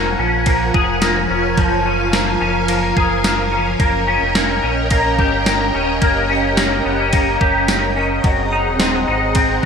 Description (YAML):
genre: dream pop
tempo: 108 BPM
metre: 4/4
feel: straight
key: F# major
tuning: A4 = 440 Hz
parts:
  - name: soft string machine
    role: sustained chords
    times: 0.0-9.7 s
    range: E#3 to G#5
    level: -20 LUFS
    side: right 1 dB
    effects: ensemble chorus
  - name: clean electric guitar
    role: arpeggios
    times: 0.0-9.7 s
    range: E#3 to G#4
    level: -18 LUFS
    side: left 2 dB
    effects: ensemble chorus, ping-pong delay
  - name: sub bass with octave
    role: bass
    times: 0.0-9.7 s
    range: D#1 to A#1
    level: -23 LUFS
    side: equal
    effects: none
  - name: gated 80s digital drum machine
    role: drums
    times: 0.5-9.7 s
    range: kick drum, ride cymbal, snare drum, tambourine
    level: -19 LUFS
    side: equal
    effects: gated reverb, gated reverb snare
room: moderate plate reverb, RT60 1.4 s, digital ambience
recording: bright 1980s-style digital production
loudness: -14 LUFS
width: side -6 dB against mid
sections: 0.0-9.7 A section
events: none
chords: 0.0 F#maj9; 3.8 D#7; 8.2 G#7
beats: 0.47 1.02 | 1.58 2.13 2.69 3.24 | 3.80 4.35 4.91 5.46 | 6.02 6.58 7.13 7.69 | 8.24 8.80 9.35